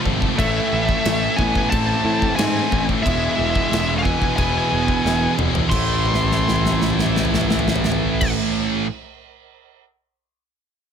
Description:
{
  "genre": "heavy metal",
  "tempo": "90 BPM",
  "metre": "4/4",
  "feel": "straight",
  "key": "A harmonic minor",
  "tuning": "A4 = 441 Hz",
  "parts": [
    { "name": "fuzz guitar", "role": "riff", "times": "0.0-8.9 s", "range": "E2 to A3", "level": "-26 LUFS", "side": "equal", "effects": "distortion" },
    { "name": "heavy high-gain guitar", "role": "riff", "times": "0.0-8.9 s", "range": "A2 to A3", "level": "-26 LUFS", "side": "left 14 dB", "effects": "distortion" },
    { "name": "scooped high-gain guitar", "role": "riff", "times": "0.0-8.9 s", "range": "E2 to A3", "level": "-25 LUFS", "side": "right 11 dB", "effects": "distortion" },
    { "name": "fuzz picked electric bass", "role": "bass", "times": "0.1-8.3 s", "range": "E1 to A2", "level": "-24 LUFS", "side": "equal", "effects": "overdrive" },
    { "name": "big rock drum kit", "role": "drums", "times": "0.1-9.8 s", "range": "crash cymbal, kick drum, snare drum, toms", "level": "-24 LUFS", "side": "equal", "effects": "none" },
    { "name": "high-gain lead guitar", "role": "melody", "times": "0.4-8.3 s", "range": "E5 to C6", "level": "-23 LUFS", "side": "left 2 dB", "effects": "distortion" },
    { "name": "high-gain lead guitar", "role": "second line", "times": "0.4-8.3 s", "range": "G#3 to E4", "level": "-28 LUFS", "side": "right 4 dB", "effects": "distortion, digital delay" }
  ],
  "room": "light reverb",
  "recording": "none",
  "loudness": "-17 LUFS",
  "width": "side -7 dB against mid",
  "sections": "0.0-5.7 A section; 5.7-8.4 B section",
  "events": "drum fill 5.0-5.7, 6.0-8.2",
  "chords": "0.4 Am; 3.0 E; 5.7 Am"
}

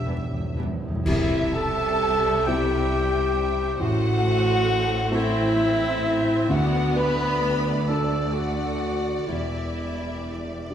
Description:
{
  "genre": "cinematic, emotional film score for orchestra",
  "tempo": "44 BPM (dotted quarters)",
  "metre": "6/8",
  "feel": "uneven beats, rubato",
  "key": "unclear",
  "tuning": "A4 = 440 Hz",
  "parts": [
    { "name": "clear studio violin section", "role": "melody", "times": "0.0-10.7 s", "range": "C5 to E5", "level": "-36 LUFS", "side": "left 1 dB", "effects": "none" },
    { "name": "warm clarinet", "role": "second line", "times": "0.0-10.7 s", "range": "E4 to B4", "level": "-27 LUFS", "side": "equal", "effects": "none" },
    { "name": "warm oboe", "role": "second line", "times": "0.0-0.6 s", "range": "E5", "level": "-42 LUFS", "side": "right 3 dB", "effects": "none" },
    { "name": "dark baby grand piano", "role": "accompaniment", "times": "0.0-10.7 s", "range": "E1 to A4", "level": "-29 LUFS", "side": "equal", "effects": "none" },
    { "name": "mellow French horn section", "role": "sustained chords", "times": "0.0-10.7 s", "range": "G3 to B4", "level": "-29 LUFS", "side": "left 1 dB", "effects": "none" },
    { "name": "clear studio cello section", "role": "bass", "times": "0.0-10.7 s", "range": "D2 to G4", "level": "-31 LUFS", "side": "right 2 dB", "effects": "none" },
    { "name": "timpani", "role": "percussion", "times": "0.0-1.0 s", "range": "E2", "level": "-30 LUFS", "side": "equal", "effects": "none" },
    { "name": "rich studio violin section", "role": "second line", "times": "0.1-10.7 s", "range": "B3 to B5", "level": "-33 LUFS", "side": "left 3 dB", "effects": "none" },
    { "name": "rich studio viola section", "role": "accompaniment", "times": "0.1-10.7 s", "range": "E3 to C4", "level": "-33 LUFS", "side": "equal", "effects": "none" },
    { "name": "rich studio double bass section", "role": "bass", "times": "0.1-10.7 s", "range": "E1 to E2", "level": "-31 LUFS", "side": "right 1 dB", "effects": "none" },
    { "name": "silver concert flute", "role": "second line", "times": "1.1-10.7 s", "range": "E5 to B5", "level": "-32 LUFS", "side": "left 1 dB", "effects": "none" },
    { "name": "clash cymbals and concert bass drum", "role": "percussion", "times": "1.1-2.9 s", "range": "none", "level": "-30 LUFS", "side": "equal", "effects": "none" }
  ],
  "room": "wet scoring stage reverb, RT60 1.8 s",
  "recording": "minimal, uncompressed stereo recording, vinyl crackle",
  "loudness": "-21 LUFS",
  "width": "side -9 dB against mid",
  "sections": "0.0-1.1 A section; 1.1-10.7 B section",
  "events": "timpani fill 0.0-1.1; band accent 1.1-2.0",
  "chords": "0.0 Em7; 1.1 C; 3.8 Am; 6.5 D; 9.3 Em7"
}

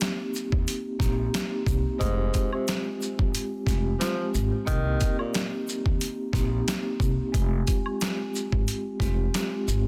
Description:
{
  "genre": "hip hop, boom-bap hip-hop",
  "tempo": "90 BPM",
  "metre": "4/4",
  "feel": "swing 55% on 16ths",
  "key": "F minor",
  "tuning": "A4 = 440 Hz",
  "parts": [
    { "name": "vibraphone with soft mallets", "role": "accompaniment", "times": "0.0-9.9 s", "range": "Ab3 to G4", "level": "-33 LUFS", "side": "equal", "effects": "high-pass filter, low-pass filter" },
    { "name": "dusty soul sampler-style drum kit", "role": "drums", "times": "0.0-9.8 s", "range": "hi-hat, kick drum, shaker, snare drum", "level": "-30 LUFS", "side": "equal", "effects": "overdrive" },
    { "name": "egg shaker and woodblock", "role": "percussion", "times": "0.0-9.8 s", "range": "none", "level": "-44 LUFS", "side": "equal", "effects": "none" },
    { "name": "upright bass", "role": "bass", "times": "0.5-9.8 s", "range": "F1 to Eb2", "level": "-30 LUFS", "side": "equal", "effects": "none" },
    { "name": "breathy tenor saxophone", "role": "melody", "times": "2.0-5.5 s", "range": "Ab2 to F3", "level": "-35 LUFS", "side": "equal", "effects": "high-pass filter, low-pass filter, digital delay" }
  ],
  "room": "little or no reverb",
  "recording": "dense, heavily limited modern master",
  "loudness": "-27 LUFS",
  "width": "mono",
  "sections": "0.0-9.9 A section",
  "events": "none",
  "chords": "0.0 Cm7; 2.0 Fmadd9; 4.7 Cm7; 7.3 Fmadd9"
}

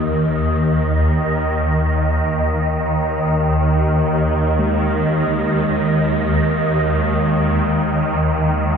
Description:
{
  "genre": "dark ambient drone",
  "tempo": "free time",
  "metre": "none",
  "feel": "none",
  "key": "unclear",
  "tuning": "A4 = 440 Hz",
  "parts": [
    { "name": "swarming drone", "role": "drone", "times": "0.0-8.8 s", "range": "Eb2 to Eb3", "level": "-16 LUFS", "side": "equal", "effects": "built-in reverb" },
    { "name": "wind-like tuned noise texture", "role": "texture", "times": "0.0-8.8 s", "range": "Eb5", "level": "-24 LUFS", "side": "right 2 dB", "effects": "built-in reverb, analog chorus" },
    { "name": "quartz singing bowl", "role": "arpeggios", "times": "4.6-8.8 s", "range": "Ab3", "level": "-25 LUFS", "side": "right 2 dB", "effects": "ping-pong delay" }
  ],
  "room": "wet plate reverb, RT60 3.2 s",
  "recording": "dreamy mix soaked in reverb, cassette tape",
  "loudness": "-15 LUFS",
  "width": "side -6 dB against mid",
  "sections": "0.0-8.8 A section",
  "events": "none",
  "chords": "none"
}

